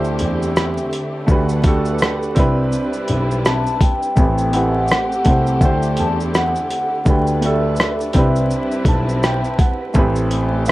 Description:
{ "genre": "lo-fi hip hop", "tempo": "83 BPM", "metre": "4/4", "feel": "swing 62% on 16ths", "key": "unclear", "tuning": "A4 = 442 Hz", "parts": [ { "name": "warm upright piano", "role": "accompaniment", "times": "0.0-10.7 s", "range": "A3 to A5", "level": "-21 LUFS", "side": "right 2 dB", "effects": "low-pass filter" }, { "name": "warm studio string section", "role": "sustained chords", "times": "0.0-10.7 s", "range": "D3 to F#5", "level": "-27 LUFS", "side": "equal", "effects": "low-pass filter" }, { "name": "dark grand piano", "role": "bass", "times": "0.0-10.6 s", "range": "A1 to E2", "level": "-20 LUFS", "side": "equal", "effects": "none" }, { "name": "dusty soul sampler-style drum kit", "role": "drums", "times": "0.0-10.7 s", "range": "hi-hat, kick drum, rim click, shaker", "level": "-17 LUFS", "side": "equal", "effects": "overdrive" }, { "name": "vibraphone with soft mallets", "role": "melody", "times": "3.5-9.6 s", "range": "E5 to A5", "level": "-22 LUFS", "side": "left 1 dB", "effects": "low-pass filter" } ], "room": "light reverb", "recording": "dark, warm production, vinyl crackle", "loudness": "-15 LUFS", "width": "side -17 dB against mid", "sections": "0.0-10.7 A section", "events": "upright piano fill 8.5-10.0", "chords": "0.0 D7sus4; 1.3 Gmaj7/D; 2.4 Cmaj7; 4.2 Am7; 5.6 D7sus4; 7.1 Gmaj7/D; 8.1 Cmaj7; 10.0 Am7" }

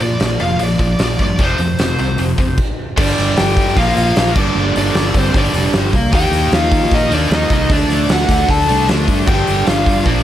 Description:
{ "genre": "hard rock", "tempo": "152 BPM", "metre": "4/4", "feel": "straight", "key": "G minor", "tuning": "A4 = 437 Hz", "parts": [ { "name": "lead guitar through a small cranked amp", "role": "melody", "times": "0.0-10.2 s", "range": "C5 to A5", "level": "-20 LUFS", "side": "left 1 dB", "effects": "overdrive, analog delay" }, { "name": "heavy high-gain guitar", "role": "riff", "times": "0.0-10.2 s", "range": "F2 to Eb4", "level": "-20 LUFS", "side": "left 1 dB", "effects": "distortion" }, { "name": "fingered electric bass", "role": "bass", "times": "0.0-10.2 s", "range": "F1 to Eb3", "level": "-19 LUFS", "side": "equal", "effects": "none" }, { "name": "huge arena drum kit", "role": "drums", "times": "0.0-10.2 s", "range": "crash cymbal, hi-hat, kick drum, snare drum", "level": "-17 LUFS", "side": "equal", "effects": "none" }, { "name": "dark smooth lead guitar", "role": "second line", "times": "3.0-10.2 s", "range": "C4 to A4", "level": "-23 LUFS", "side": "right 2 dB", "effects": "overdrive" }, { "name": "phased analog pad", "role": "sustained chords", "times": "3.5-10.2 s", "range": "G3 to F5", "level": "-30 LUFS", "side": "equal", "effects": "none" }, { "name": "crunchy overdriven guitar", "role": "riff", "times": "3.0-10.2 s", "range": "G2 to Eb4", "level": "-22 LUFS", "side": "right 1 dB", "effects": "none" } ], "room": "light reverb", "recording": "none", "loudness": "-12 LUFS", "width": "side -12 dB against mid", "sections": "0.0-3.0 A section; 3.0-10.2 B section", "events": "stop 2.6-3.0", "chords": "0.0 Bb; 1.4 F5; 3.0 G5; 3.8 Bb5; 4.4 G5; 6.1 Eb; 7.7 D5; 9.3 G5" }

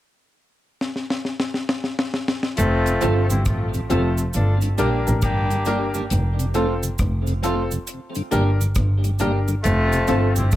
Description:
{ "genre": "roots reggae", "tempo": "68 BPM", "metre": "4/4", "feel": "swing 65% on 16ths", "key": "F major", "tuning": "A4 = 440 Hz", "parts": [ { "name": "deep reggae drum kit", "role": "drums", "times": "0.8-10.6 s", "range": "hi-hat, kick drum, rim click, snare drum", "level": "-24 LUFS", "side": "left 1 dB", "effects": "none" }, { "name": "dark horn section", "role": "second line", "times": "2.6-10.6 s", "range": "F3 to A4", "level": "-24 LUFS", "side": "left 1 dB", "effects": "tape echo" }, { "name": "muted double bass", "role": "bass", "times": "2.6-10.6 s", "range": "F1 to Bb1", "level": "-21 LUFS", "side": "equal", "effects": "none" }, { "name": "cabasa", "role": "percussion", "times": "2.6-10.6 s", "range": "none", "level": "-34 LUFS", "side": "right 9 dB", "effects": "none" }, { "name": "mellow tonewheel organ", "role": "accompaniment", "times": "2.9-10.4 s", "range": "F2 to D4", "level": "-29 LUFS", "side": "left 1 dB", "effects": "slow rotary speaker, tape echo" }, { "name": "electric guitar at the edge of break-up", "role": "accompaniment", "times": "3.0-10.3 s", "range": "A3 to A4", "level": "-28 LUFS", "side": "right 6 dB", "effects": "tape echo" }, { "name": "warm upright piano", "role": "stabs", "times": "3.0-10.4 s", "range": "C4 to Bb4", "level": "-26 LUFS", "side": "left 3 dB", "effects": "none" } ], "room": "little or no reverb", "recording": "echo-heavy mix", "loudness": "-19 LUFS", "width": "side -14 dB against mid", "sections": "0.0-2.6 A section; 2.6-10.6 B section", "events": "drum fill 0.8-2.6", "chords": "0.0 N.C.; 2.6 F; 4.3 Gm; 6.1 F; 7.9 Gm; 9.6 F" }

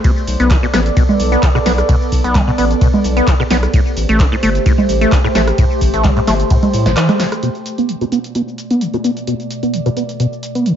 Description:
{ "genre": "acid house", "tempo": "130 BPM", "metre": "4/4", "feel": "swing 54% on 16ths", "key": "B phrygian", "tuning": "A4 = 440 Hz", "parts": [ { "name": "warbly tape-like pad", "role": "sustained chords", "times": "0.0-10.8 s", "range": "B2 to D5", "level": "-21 LUFS", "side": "right 1 dB", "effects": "chorus, built-in reverb, phaser, sidechain pumping" }, { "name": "liquid acid bass", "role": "riff", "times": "0.0-10.7 s", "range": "A1 to B3", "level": "-17 LUFS", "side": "equal", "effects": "phaser, overdrive, sidechain pumping, ping-pong delay" }, { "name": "electronic kick drum", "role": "drums", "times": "0.0-6.6 s", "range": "none", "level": "-14 LUFS", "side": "equal", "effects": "none" }, { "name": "punchy analog drum machine", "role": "drums", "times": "0.0-10.8 s", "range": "congas, handclaps, hi-hat, ride cymbal, rim click, shaker, snare drum", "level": "-20 LUFS", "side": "right 2 dB", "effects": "none" }, { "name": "saturated sub bass", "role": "bass", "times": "0.3-6.9 s", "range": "G1 to A2", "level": "-17 LUFS", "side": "equal", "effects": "sidechain pumping" } ], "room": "light reverb, digital ambience", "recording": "nothing above 7.5 kHz", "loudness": "-12 LUFS", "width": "side -9 dB against mid", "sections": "0.0-7.4 A section; 7.4-10.8 B section", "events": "drop 0.0-7.4; kick drops out 7.0-7.4; band accent 7.0; filter sweep on acid bass 7.4-10.8; filter sweep on ambient pad 7.4-10.8", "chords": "0.0 Bm7; 3.7 Am7; 7.4 Bm7" }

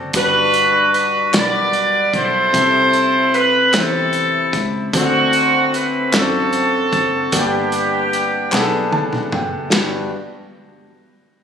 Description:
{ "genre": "slow gospel", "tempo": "50 BPM (dotted quarters)", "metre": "6/8", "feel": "straight", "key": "G major", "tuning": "A4 = 442 Hz", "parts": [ { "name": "clear concert grand piano", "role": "accompaniment", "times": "0.0-10.1 s", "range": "G2 to B5", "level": "-21 LUFS", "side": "left 3 dB", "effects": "none" }, { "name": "fingered electric bass", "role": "bass", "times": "0.0-10.1 s", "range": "F#1 to F#2", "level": "-28 LUFS", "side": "right 1 dB", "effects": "none" }, { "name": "warm soul drum kit", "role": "drums", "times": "0.1-9.9 s", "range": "hi-hat, kick drum, ride cymbal, snare drum, toms", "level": "-21 LUFS", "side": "right 1 dB", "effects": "none" }, { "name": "warm horn section", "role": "melody", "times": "0.2-8.9 s", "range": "A3 to D5", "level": "-15 LUFS", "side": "right 1 dB", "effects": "none" }, { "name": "group handclap", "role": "percussion", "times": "1.3-10.1 s", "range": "none", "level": "-25 LUFS", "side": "left 1 dB", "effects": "none" } ], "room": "moderate concert hall reverb, RT60 1.9 s", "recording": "recorded on a phone in the room, studio reverb, compression", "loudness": "-14 LUFS", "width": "side -8 dB against mid", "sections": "0.0-9.7 A section; 9.7-11.4 B section", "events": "drum fill 8.5-9.7; grand piano fill 8.5-9.7", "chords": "0.1 Gmaj7; 2.5 C6; 4.9 D7; 7.3 Gmaj7" }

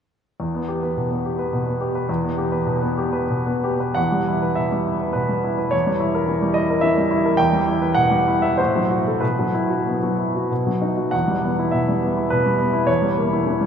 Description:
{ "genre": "classical, romantic character piece for solo piano", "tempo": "84-111 BPM", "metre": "3/4", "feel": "rubato", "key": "E minor", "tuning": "A4 = 440 Hz", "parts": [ { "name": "clear baby grand piano", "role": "solo", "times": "0.4-13.7 s", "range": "E2 to G5", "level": "-18 LUFS", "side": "equal", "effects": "none" } ], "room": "wet cathedral reverb, RT60 6.3 s", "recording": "in a vast, echoing space, lossy compression artefacts", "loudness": "-18 LUFS", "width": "side -7 dB against mid", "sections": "0.4-4.0 A section; 4.0-13.7 B section", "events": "none", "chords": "0.4 Em; 5.7 Edim7; 7.4 Em; 8.6 F#dim/A; 9.2 Bsus4; 10.5 B; 11.1 Em; 12.9 Edim7" }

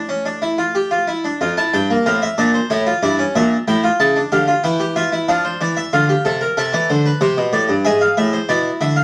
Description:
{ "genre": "classical, baroque-style 3-part fugue for harpsichord", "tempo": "93 BPM", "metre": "4/4", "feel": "straight", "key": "D minor", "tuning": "A4 = 440 Hz", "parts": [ { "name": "harpsichord", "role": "solo", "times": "0.0-9.0 s", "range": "F2 to A5", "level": "-17 LUFS", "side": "equal", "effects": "none" } ], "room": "moderate studio reverb, RT60 0.6 s", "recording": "vinyl crackle", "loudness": "-17 LUFS", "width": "mono", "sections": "0.0-1.4 A section; 1.4-9.0 B section", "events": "none", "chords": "0.0 A; 1.4 Dm/F; 2.7 A; 4.0 A7/C#; 5.3 Dm; 6.6 Am/C; 7.8 E/G#" }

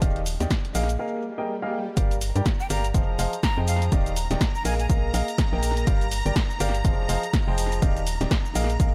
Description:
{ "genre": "piano house", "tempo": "123 BPM", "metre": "4/4", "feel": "swing 59% on 16ths", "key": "unclear", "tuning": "A4 = 440 Hz", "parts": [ { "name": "warm grand piano", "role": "riff", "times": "0.0-8.9 s", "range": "Eb3 to G5", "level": "-32 LUFS", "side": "equal", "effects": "sidechain pumping, low-pass filter, tape echo" }, { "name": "organ-like FM bass", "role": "bass", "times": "0.0-8.9 s", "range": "Eb1 to G2", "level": "-28 LUFS", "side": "equal", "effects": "sidechain pumping" }, { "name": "electronic kick drum", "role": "drums", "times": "0.0-8.9 s", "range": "none", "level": "-26 LUFS", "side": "equal", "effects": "none" }, { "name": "punchy analog drum machine", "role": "drums", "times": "0.0-8.9 s", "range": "hi-hat, shaker, snare drum", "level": "-34 LUFS", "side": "equal", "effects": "tape echo" }, { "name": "swell", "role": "sound effects", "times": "1.2-2.0 s", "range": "none", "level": "-39 LUFS", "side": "equal", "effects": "none" }, { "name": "string machine, violins", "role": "sustained chords", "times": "2.0-8.9 s", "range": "Bb5", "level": "-38 LUFS", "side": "equal", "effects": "ensemble chorus, sidechain pumping" }, { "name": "breathy bright jazz flute", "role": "melody", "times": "2.6-4.9 s", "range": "F5 to Bb5", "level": "-36 LUFS", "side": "equal", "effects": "tape echo" } ], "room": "little or no reverb", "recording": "echo-heavy mix", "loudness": "-24 LUFS", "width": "mono", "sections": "0.0-2.0 A section; 2.0-8.9 B section", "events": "break 1.0-2.0; swell 1.2-2.0; drop 2.0-8.9", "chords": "0.0 Ebmaj9; 0.7 Bb7sus4; 2.0 Gm7; 2.9 Fm7; 3.9 Ebmaj9; 4.7 Bb7sus4; 5.9 Gm7; 6.8 Fm7; 7.8 Ebmaj9" }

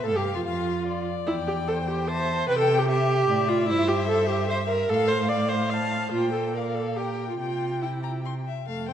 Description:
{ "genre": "quick classical-period movement for string quartet", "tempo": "147 BPM", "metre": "3/4", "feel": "rubato", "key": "C major", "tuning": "A4 = 442 Hz", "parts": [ { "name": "rich violin", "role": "melody", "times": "0.0-8.9 s", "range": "Bb4 to C6", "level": "-34 LUFS", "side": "left 11 dB", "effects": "none" }, { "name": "rich violin", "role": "second line", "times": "0.0-8.9 s", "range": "F4 to A5", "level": "-34 LUFS", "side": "left 4 dB", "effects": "none" }, { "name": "warm viola", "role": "accompaniment", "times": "0.0-8.9 s", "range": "A3 to F5", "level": "-25 LUFS", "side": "right 1 dB", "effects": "none" }, { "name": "rich cello", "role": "bass", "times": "0.0-8.9 s", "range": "E2 to C3", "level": "-29 LUFS", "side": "right 2 dB", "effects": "none" } ], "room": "wet concert hall reverb, RT60 1.9 s", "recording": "dark, warm production", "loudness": "-23 LUFS", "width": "side -9 dB against mid", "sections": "0.0-8.7 A section", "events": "none", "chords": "0.1 G5; 1.3 C/E; 2.5 C; 3.7 C/G; 4.9 F/A; 6.1 Gm7/Bb; 7.4 C" }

